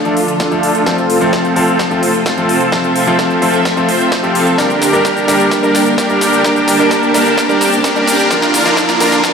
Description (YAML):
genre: EDM, festival progressive house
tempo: 129 BPM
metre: 4/4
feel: straight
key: unclear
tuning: A4 = 441 Hz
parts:
  - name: bright baby grand piano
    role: accompaniment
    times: 0.0-9.3 s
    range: F3 to Bb4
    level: -17 LUFS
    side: left 1 dB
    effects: sidechain pumping, digital delay
  - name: clear studio string section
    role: sustained chords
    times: 0.0-9.3 s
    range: C3 to A5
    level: -20 LUFS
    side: left 2 dB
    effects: sidechain pumping, low-pass filter
  - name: supersaw chords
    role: riff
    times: 0.1-9.2 s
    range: C4 to C5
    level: -13 LUFS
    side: right 1 dB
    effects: sidechain pumping, low-pass filter, digital delay
  - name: big-room dance drum kit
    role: drums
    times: 0.1-9.3 s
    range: cabasa, hi-hat, snare drum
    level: -20 LUFS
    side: equal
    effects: overdrive, high-pass filter on toms, high-pass filter on snare, high-pass filter on hats, high-pass filter on perc
  - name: electronic kick drum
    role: drums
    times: 0.4-9.3 s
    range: none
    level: -21 LUFS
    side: equal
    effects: overdrive, high-pass filter on kick
  - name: riser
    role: sound effects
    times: 6.0-9.3 s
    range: none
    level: -23 LUFS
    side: right 1 dB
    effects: none
room: wet lush hall reverb, RT60 2.3 s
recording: played on a big sound system in a bare room, stone room reverb, high-pass filter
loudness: -10 LUFS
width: side -6 dB against mid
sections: 0.0-9.3 A section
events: build-up 0.0-9.3; drum fill 0.0-9.3; filter sweep on supersaw synth 0.0-9.3; filter sweep on string section 0.0-9.3; filter sweep 0.0-9.3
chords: 0.0 Dm; 0.9 F; 4.6 Gm; 8.3 Bb